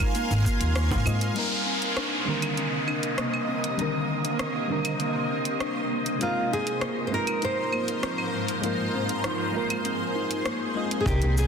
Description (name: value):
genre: sunset chillout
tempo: 99 BPM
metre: 4/4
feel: straight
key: C minor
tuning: A4 = 442 Hz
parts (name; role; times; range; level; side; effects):
- mellow FM electric piano; accompaniment; 0.0-11.5 s; D3 to Eb5; -32 LUFS; moving between left 6 dB and right 7 dB; chorus, auto-pan, tape echo
- shimmering ambient pad; sustained chords; 0.0-11.5 s; Ab2 to C6; -30 LUFS; right 1 dB; chorus, built-in reverb, phaser
- electronic kick drum; drums; 0.0-1.0, 11.1-11.2 s; none; -27 LUFS; equal; none
- smooth R&B drum kit; drums; 0.0-11.5 s; claves, crash cymbal, hi-hat, rim click, shaker; -33 LUFS; equal; soft clipping on snare
- kalimba; arpeggios; 0.1-11.4 s; Bb3 to F4; -33 LUFS; left 2 dB; low-pass filter, tape echo
- upright bass; bass; 0.3-1.3, 11.1-11.4 s; Ab1 to Ab2; -24 LUFS; equal; none
- bongos and congas; percussion; 0.3-1.0, 11.2-11.3 s; none; -38 LUFS; right 2 dB; none
- downlifter; sound effects; 1.4-6.2 s; none; -32 LUFS; equal; none
- wind-like tuned noise texture; texture; 2.2-11.1 s; Eb5 to Eb6; -36 LUFS; left 1 dB; built-in reverb
- nylon-string guitar; melody; 6.2-11.5 s; F4 to C5; -29 LUFS; equal; tape echo
room: wet lush hall reverb, RT60 2.2 s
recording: dense, heavily limited modern master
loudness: -24 LUFS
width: side -6 dB against mid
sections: 0.0-1.4 A section; 1.4-11.1 B section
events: filter sweep on kalimba 1.4-11.1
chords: 0.0 Ab69; 1.4 Cm9; 6.2 Ab69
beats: 0.15 0.76 | 1.36 1.97 2.58 3.18 | 3.79 4.39 5.00 5.61 | 6.21 6.82 7.42 8.03 | 8.64 9.24 9.85 10.46 | 11.06